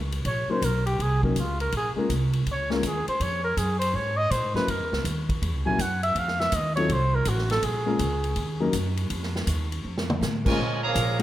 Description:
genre	jazz, big band swing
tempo	163 BPM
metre	4/4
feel	swing 65% on 8ths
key	Bb minor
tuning	A4 = 441 Hz
part	upright bass	bass	0.0-11.2 s	A1 to Bb2	-27 LUFS	right 1 dB	none
part	swinging big-band drum kit	drums	0.1-11.2 s	crash cymbal, hi-hat, kick drum, ride cymbal, snare drum, toms	-31 LUFS	equal	none
part	breathy trumpet	melody	0.3-8.7 s	Db4 to Ab5	-27 LUFS	equal	none
part	warm grand piano	accompaniment	0.5-11.2 s	Gb3 to Bb4	-30 LUFS	left 3 dB	none
part	clear trumpet section	melody	10.5-11.2 s	Eb4 to Bb5	-27 LUFS	right 1 dB	none
part	muted trombone section	second line	10.5-11.2 s	Db3 to Bb3	-31 LUFS	right 4 dB	none
part	clear saxophone section	sustained chords	10.9-11.1 s	Ab3 to Bb4	-33 LUFS	equal	none
room	light reverb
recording	none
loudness	-23 LUFS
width	side -13 dB against mid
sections	0.0-10.6 A section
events	trumpet solo 0.0-10.6; drum fill 9.8-10.2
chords	0.0 Ebm7; 1.7 Bbm7; 4.7 Gb7; 6.2 F7; 7.6 Bbm7; 8.4 Ebm7; 9.1 F7; 10.6 Bbm7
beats	| 0.25 0.62 0.99 1.36 | 1.73 2.10 2.46 2.83 | 3.20 3.57 3.94 4.31 | 4.68 5.05 5.42 5.79 | 6.16 6.53 6.90 7.26 | 7.63 8.00 8.37 8.74 | 9.11 9.48 9.85 10.21 | 10.58 10.95

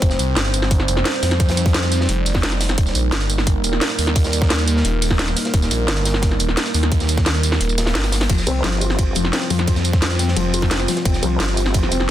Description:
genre	dark technical drum and bass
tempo	174 BPM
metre	4/4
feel	straight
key	unclear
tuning	A4 = 440 Hz
part	dark analog pad	sustained chords	0.0-12.1 s	G3 to C5	-25 LUFS	right 2 dB	wide subtle chorus, sidechain pumping
part	phased detuned saw bass	bass	0.0-12.1 s	Eb1 to F2	-20 LUFS	equal	phaser, tube saturation
part	crunchy breakbeat drum kit	drums	0.0-12.1 s	hi-hat, snare drum	-30 LUFS	equal	none
part	drum and bass drum kit	drums	0.0-12.1 s	crash cymbal, hi-hat, ride cymbal, snare drum, tambourine	-22 LUFS	equal	none
part	electronic kick drum	drums	0.0-11.8 s	none	-18 LUFS	equal	none
part	felt-muted upright piano	arpeggios	8.3-12.0 s	F3 to F4	-24 LUFS	left 7 dB	sidechain pumping, digital delay
part	vowel-sweep wobble bass	bass	8.5-9.1, 11.2-11.9 s	G1 to C2	-21 LUFS	equal	chorus
room	light reverb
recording	dense, heavily limited modern master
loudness	-16 LUFS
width	side -12 dB against mid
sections	0.0-12.1 A section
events	kick drops out 7.6-8.3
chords	0.0 Fsus2; 2.8 Eb; 8.3 Fsus2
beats	| 0.02 0.36 0.71 1.05 | 1.40 1.74 2.09 2.43 | 2.78 3.12 3.47 3.81 | 4.16 4.50 4.85 5.19 | 5.54 5.88 6.23 6.57 | 6.92 7.26 7.61 7.95 | 8.30 8.64 8.98 9.33 | 9.68 10.02 10.37 10.71 | 11.05 11.40 11.74 12.09

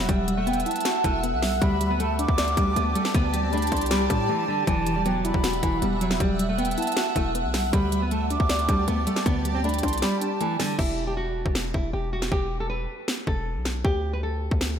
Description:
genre	hip hop, trap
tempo	157 BPM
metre	4/4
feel	half-time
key	unclear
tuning	A4 = 440 Hz
part	nylon-string guitar	melody	0.0-14.6 s	D3 to B4	-29 LUFS	right 1 dB	low-pass filter, diffuse ambient delay
part	breathy mellow silver concert flute	second line	0.0-10.8 s	G5 to D6	-30 LUFS	right 2 dB	diffuse ambient delay
part	soft round pluck	accompaniment	0.0-10.8 s	D3 to D5	-31 LUFS	left 2 dB	chorus, low-pass filter
part	granular cloud pad	sustained chords	0.0-10.8 s	G4 to A5	-30 LUFS	equal	built-in reverb
part	hard-hitting 808-style bass	bass	0.0-14.8 s	E1 to A2	-28 LUFS	equal	none
part	trap drum kit	drums	0.1-14.7 s	crash cymbal, hi-hat, kick drum, snare drum	-28 LUFS	equal	none
room	moderate plate reverb, RT60 2.1 s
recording	dreamy mix soaked in reverb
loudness	-22 LUFS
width	side -8 dB against mid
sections	0.0-10.8 A section; 10.8-14.8 B section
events	break 4.3-4.7, 10.8-14.8; kick muted 10.0-10.8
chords	0.0 Emadd9; 1.6 Dsus4; 4.7 Emadd9; 7.7 Dsus4; 10.8 N.C.; 13.8 Dsus4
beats	| 0.09 0.47 0.85 1.23 | 1.62 2.00 2.38 2.76 | 3.15 3.53 3.91 4.29 | 4.67 5.06 5.44 5.82 | 6.20 6.58 6.97 7.35 | 7.73 8.11 8.49 8.88 | 9.26 9.64 10.02 10.41 | 10.79 11.17 11.55 11.94 | 12.32 12.70 13.08 13.46 | 13.85 14.23 14.61

